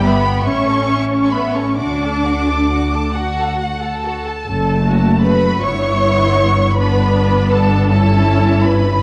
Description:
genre	classical, slow romantic movement for string orchestra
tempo	43-54 BPM (dotted quarters)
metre	6/8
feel	rubato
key	unclear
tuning	A4 = 440 Hz
part	rich studio violin section	melody	0.0-9.0 s	F#5 to D6	-23 LUFS	equal	none
part	rich studio violin section	second line	0.0-9.0 s	F#4 to A5	-24 LUFS	equal	none
part	clear studio viola section	accompaniment	0.0-9.0 s	A3 to A4	-22 LUFS	equal	none
part	rich studio cello section	bass	0.0-9.0 s	F#2 to D4	-22 LUFS	equal	none
part	rich studio double bass section	bass	0.0-9.0 s	F#1 to D2	-20 LUFS	equal	none
room	moderate scoring stage reverb, RT60 1.5 s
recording	worn, warbling old tape, cassette tape, warbly pitch drift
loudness	-15 LUFS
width	mono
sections	0.0-4.5 A section; 4.5-9.0 B section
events	none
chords	0.5 A; 1.8 D; 4.5 F#m; 5.6 G; 6.8 Em/G

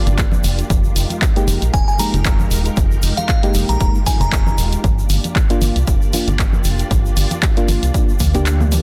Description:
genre	deep house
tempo	116 BPM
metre	4/4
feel	swing 55% on 16ths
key	F dorian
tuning	A4 = 439 Hz
part	soft string machine	sustained chords	0.0-8.8 s	Ab3 to D5	-30 LUFS	equal	ensemble chorus, vintage 12-bit sampler grit, sidechain pumping
part	organ-like FM bass	bass	0.1-8.8 s	Eb1 to D2	-20 LUFS	equal	sidechain pumping
part	punchy analog drum machine	drums	0.1-8.8 s	handclaps, hi-hat, toms	-26 LUFS	equal	none
part	congas	percussion	0.1-8.7 s	none	-30 LUFS	equal	sidechain pumping on perc
part	tube shaker	percussion	0.1-8.8 s	none	-33 LUFS	equal	none
part	electronic kick drum	drums	0.2-8.3 s	none	-19 LUFS	equal	none
part	mellow FM electric piano	stabs	1.4-8.8 s	Ab3 to G4	-25 LUFS	equal	chorus, sidechain pumping, digital delay
part	glassy synth bell	melody	1.7-4.6 s	F5 to Bb5	-27 LUFS	equal	chorus, vintage 12-bit sampler grit, dub echo
room	digital ambience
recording	dense, heavily limited modern master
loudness	-16 LUFS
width	mono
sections	0.0-8.8 A section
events	kick drops out 8.5-8.8; drum fill 8.6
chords	0.0 Gm7; 0.7 Fm11; 4.8 Gm7

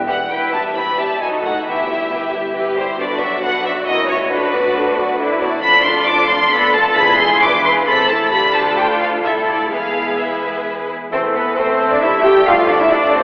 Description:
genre	quick classical-period movement for symphony orchestra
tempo	134 BPM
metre	3/4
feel	straight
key	E minor, A minor from 5.6 s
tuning	A4 = 440 Hz
part	large flute ensemble	second line	0.0-0.1, 11.1-13.2 s	B4 to G5	-21 LUFS	equal	none
part	mellow clarinet	second line	0.0-0.1, 11.1-13.2 s	none	barely audible	none	none
part	warm oboe	second line	0.0-0.1, 11.1-13.2 s	D5 to E5	-21 LUFS	equal	none
part	clear bassoon	accompaniment	0.0-0.1, 11.1-13.2 s	A3	-22 LUFS	equal	none
part	mellow French horn section	sustained chords	0.0-0.1, 11.1-13.2 s	E3 to A3	-26 LUFS	equal	none
part	dark studio cello section	bass	0.0-13.2 s	E2 to B4	-20 LUFS	equal	none
part	warm studio double bass section	bass	0.0-13.2 s	E1 to F2	-32 LUFS	equal	none
part	rich studio violin section	melody	0.1-13.2 s	A4 to D6	-17 LUFS	equal	none
part	rich studio violin section	second line	0.1-13.2 s	C#4 to G5	-20 LUFS	equal	none
part	warm studio viola section	accompaniment	0.1-13.2 s	D3 to G4	-22 LUFS	equal	none
part	timpani	percussion	7.0-7.6 s	E2	-40 LUFS	equal	none
room	wet concert hall reverb, RT60 2.5 s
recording	recorded in a church or concert hall, telephone sound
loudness	-13 LUFS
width	side -24 dB against mid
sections	0.3-11.1 A section; 11.1-13.2 B section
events	none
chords	0.3 Em; 1.2 D#dim/F#; 1.7 Em/G; 3.0 Bm; 3.9 A#dim/C#; 4.3 Bm/D; 5.6 Dm/F; 6.5 Bm7b5/F; 7.0 E7b9; 7.9 Am; 8.3 Dm; 9.2 Am/C; 9.7 E; 11.1 Am; 12.5 Dm

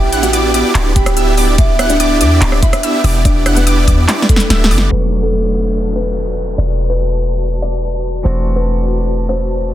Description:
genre	future bass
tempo	144 BPM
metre	4/4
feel	half-time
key	E minor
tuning	A4 = 441 Hz
part	kalimba	melody	0.0-9.7 s	A3 to G5	-19 LUFS	equal	sidechain pumping, tape echo
part	wide unison pluck	arpeggios	0.0-4.9 s	B5 to F#6	-23 LUFS	right 1 dB	sidechain pumping, tape echo
part	supersaw chords	riff	0.0-4.9 s	B3 to F#5	-18 LUFS	right 1 dB	sidechain pumping
part	warm 808-style bass	bass	0.0-9.7 s	D1 to E2	-15 LUFS	equal	sidechain pumping
part	big-room dance drum kit	drums	0.1-4.9 s	handclaps, hi-hat, rim click, snare drum	-18 LUFS	equal	overdrive
part	electronic kick drum	drums	1.0-4.4 s	none	-12 LUFS	equal	none
part	clean electric guitar	accompaniment	4.9-9.7 s	E3 to F#4	-24 LUFS	right 2 dB	sidechain pumping, tape echo
part	ethereal airy pad	sustained chords	5.9-9.7 s	F#4 to A5	-26 LUFS	left 3 dB	ensemble chorus, built-in reverb, vintage 12-bit sampler grit, sidechain pumping
part	downlifter	sound effects	4.9-8.2 s	none	-28 LUFS	left 3 dB	none
room	digital ambience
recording	dense, heavily limited modern master, low-pass filter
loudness	-11 LUFS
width	side -13 dB against mid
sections	0.0-4.9 A section; 4.9-9.7 B section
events	drop 0.0-4.9; drum fill 4.1-4.9; kick drops out 4.5-4.9; band accent 4.8; filter sweep 4.9-9.7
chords	0.0 Em7; 4.9 Bm7/E; 8.2 D7/E

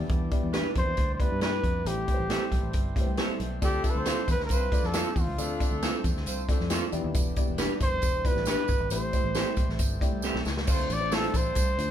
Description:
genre	uptempo 1960s-style soul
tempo	136 BPM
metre	4/4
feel	straight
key	D dorian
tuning	A4 = 438 Hz
part	dark upright piano	accompaniment	0.0-11.9 s	A2 to A5	-36 LUFS	left 4 dB	none
part	overdriven tonewheel organ	sustained chords	0.0-11.9 s	B2 to D4	-41 LUFS	equal	slow rotary speaker
part	fingered electric bass	bass	0.0-11.9 s	E1 to G2	-33 LUFS	equal	none
part	swinging big-band drum kit	drums	0.1-11.9 s	crash cymbal, hi-hat, kick drum, snare drum	-28 LUFS	equal	none
part	electric guitar through a small old amp	stabs	0.5-11.2 s	C4 to B4	-33 LUFS	right 4 dB	none
part	mellow trumpet	melody	0.8-11.9 s	F4 to D5	-30 LUFS	equal	none
part	mellow horn section	second line	3.6-6.9, 10.7-11.0 s	F3 to D5	-38 LUFS	equal	tape echo
part	tambourine	percussion	3.6-11.9 s	none	-40 LUFS	right 5 dB	none
room	light reverb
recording	band playing live in one room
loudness	-25 LUFS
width	side -10 dB against mid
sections	0.0-10.7 A section; 10.7-11.9 B section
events	upright piano fill 2.7-3.6, 9.8-10.7; drum fill 10.2-10.7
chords	0.0 Em7; 1.9 Am7; 3.6 Dm7; 6.9 Em7; 8.9 Am7; 10.7 Dm7

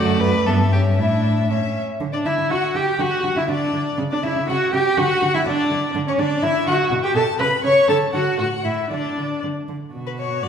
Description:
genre	quick classical-period movement for string quartet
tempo	121 BPM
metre	2/4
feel	rubato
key	D major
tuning	A4 = 440 Hz
part	rich violin	melody	0.0-10.5 s	B4 to C#6	-27 LUFS	left 6 dB	none
part	dark violin	second line	0.0-10.5 s	E4 to C#6	-27 LUFS	left 3 dB	none
part	rich viola	accompaniment	0.0-10.5 s	A3 to C#5	-20 LUFS	right 1 dB	none
part	warm cello	bass	0.0-10.5 s	F#2 to D3	-23 LUFS	right 2 dB	none
room	wet recital hall reverb, RT60 1.7 s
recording	heard from further back in the room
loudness	-17 LUFS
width	side -7 dB against mid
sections	0.0-2.0 A section; 2.0-9.9 B section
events	none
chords	0.5 Em/G; 1.0 Asus4; 1.5 A; 2.0 Dadd9; 4.0 Em13/C#; 5.0 Dadd9; 5.9 N.C.; 6.4 D; 6.9 Gadd9; 7.4 Bsus2; 7.9 D; 8.4 A5; 8.9 N.C.; 9.9 B5

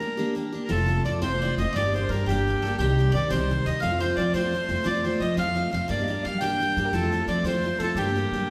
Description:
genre	celtic folk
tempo	116 BPM (dotted quarters)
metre	6/8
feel	straight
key	unclear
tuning	A4 = 440 Hz
part	accordion	melody	0.0-8.5 s	G4 to G5	-30 LUFS	equal	none
part	concert flute	second line	0.0-8.5 s	G4 to G5	-36 LUFS	equal	none
part	picked steel-string acoustic guitar	accompaniment	0.0-8.5 s	C3 to G4	-31 LUFS	equal	none
part	bowl-back mandolin	second line	0.7-8.5 s	G4 to G5	-38 LUFS	equal	none
part	upright bass	bass	0.7-8.5 s	F1 to G3	-29 LUFS	equal	none
room	wet recital hall reverb, RT60 1.7 s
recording	recorded in a church or concert hall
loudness	-25 LUFS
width	mono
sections	0.7-8.5 A section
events	none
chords	0.0 Gm; 0.7 F; 1.7 Gm; 2.8 Cm; 3.8 F; 5.9 Gm; 6.9 F; 8.0 Gm

